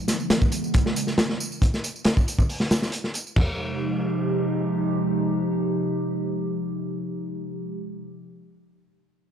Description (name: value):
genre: breakbeat, breaks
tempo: 137 BPM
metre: 4/4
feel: straight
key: F minor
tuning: A4 = 440 Hz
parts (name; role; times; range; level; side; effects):
- warbly tape-like pad; sustained chords; 0.0-7.6 s; C3 to G4; -26 LUFS; right 1 dB; chorus, built-in reverb, sidechain pumping
- crunchy breakbeat drum kit; drums; 0.1-3.5 s; crash cymbal, hi-hat, kick drum, snare drum, toms; -22 LUFS; equal; none
- tambourine; drums; 0.1-3.3 s; none; -35 LUFS; right 2 dB; overdrive
room: light reverb, small room ambience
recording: dry, gritty hardware recording, transformer saturation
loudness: -22 LUFS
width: side -9 dB against mid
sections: 0.0-3.4 A section; 3.4-6.9 B section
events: filter sweep on ambient pad 0.0-1.6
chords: 0.0 Dbm9; 3.4 Fm9